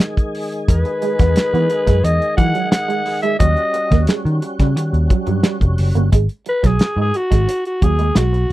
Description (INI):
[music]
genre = funk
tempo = 88 BPM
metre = 4/4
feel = straight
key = unclear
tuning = A4 = 438 Hz
[part]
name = tonewheel organ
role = sustained chords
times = 0.0-6.1 s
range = D#3 to G#4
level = -26 LUFS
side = left 1 dB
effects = overdrive, chorus vibrato, slow rotary speaker
[part]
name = cloth-damped thuddy drum kit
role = drums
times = 0.0-8.5 s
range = hi-hat, kick drum, snare drum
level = -16 LUFS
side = equal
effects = none
[part]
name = growling alto saxophone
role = melody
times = 0.7-8.5 s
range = F#4 to F#5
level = -19 LUFS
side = left 1 dB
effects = none
[part]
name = vintage muted picked electric bass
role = bass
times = 0.7-8.5 s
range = E#1 to E3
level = -16 LUFS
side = equal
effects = none
[part]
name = electric guitar through a small old amp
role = riff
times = 0.9-8.4 s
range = F#3 to B3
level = -23 LUFS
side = right 10 dB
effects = lush chorus
[sound]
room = little or no reverb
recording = dry, close 1970s-style studio recording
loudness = -14 LUFS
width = side -16 dB against mid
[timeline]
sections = 0.0-6.1 A section; 6.1-8.5 B section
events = alto saxophone solo 6.1-8.5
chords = 0.0 Emaj9; 3.4 D#7#9; 6.1 G#m7